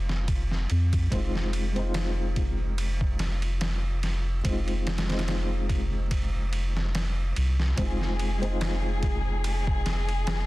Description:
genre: trip hop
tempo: 72 BPM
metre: 4/4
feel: swing 55% on 16ths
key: F minor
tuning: A4 = 440 Hz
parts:
  - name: felt-muted upright piano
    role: accompaniment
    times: 0.0-10.5 s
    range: Ab3 to F4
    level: -34 LUFS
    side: left 1 dB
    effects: tremolo, low-pass filter, tape echo
  - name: round analog bass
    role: bass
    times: 0.0-10.5 s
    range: F1 to F2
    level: -27 LUFS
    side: equal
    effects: none
  - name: trip hop sampler-style drum kit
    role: drums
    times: 0.1-10.5 s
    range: kick drum, ride cymbal, snare drum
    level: -30 LUFS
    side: equal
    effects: overdrive, studio reverb
  - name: dark chamber string section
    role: sustained chords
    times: 7.8-10.5 s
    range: Ab4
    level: -34 LUFS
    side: left 3 dB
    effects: none
room: little or no reverb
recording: dense, heavily limited modern master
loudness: -25 LUFS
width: side -19 dB against mid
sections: 0.0-10.5 A section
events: none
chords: 0.0 Fm7

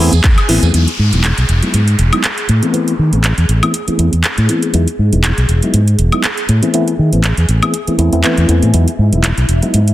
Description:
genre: filtered disco house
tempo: 120 BPM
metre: 4/4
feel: swing 55% on 16ths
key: E major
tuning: A4 = 442 Hz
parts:
  - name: reed electric piano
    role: accompaniment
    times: 0.0-9.8 s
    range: E3 to E4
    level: -17 LUFS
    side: left 1 dB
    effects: fast tremolo, phaser, sidechain pumping, low-pass filter
  - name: phased string machine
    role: sustained chords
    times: 0.0-9.9 s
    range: E4 to G#5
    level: -27 LUFS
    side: equal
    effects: ensemble chorus, phaser, sidechain pumping, low-pass filter
  - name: overdriven fingered electric bass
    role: bass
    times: 0.0-9.9 s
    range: E1 to D#3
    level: -12 LUFS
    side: equal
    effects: sidechain pumping, low-pass filter
  - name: house drum kit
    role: drums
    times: 0.1-9.9 s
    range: handclaps, hi-hat, woodblock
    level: -18 LUFS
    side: equal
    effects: sidechain pumping on hats, sidechain pumping on perc
  - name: tambourine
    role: percussion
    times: 0.1-0.7 s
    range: none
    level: -28 LUFS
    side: right 10 dB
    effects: sidechain pumping on perc, low-pass filter on perc
  - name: downlifter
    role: sound effects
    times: 0.7-4.7 s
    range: none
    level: -24 LUFS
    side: left 1 dB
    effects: none
room: light reverb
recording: dense, heavily limited modern master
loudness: -10 LUFS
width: side -15 dB against mid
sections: 0.7-9.9 A section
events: filter sweep 0.7-9.9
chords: 0.0 Amadd9; 0.7 Emaj9; 2.5 Amadd9; 4.7 Emaj9; 6.5 Amadd9; 8.7 Emaj9

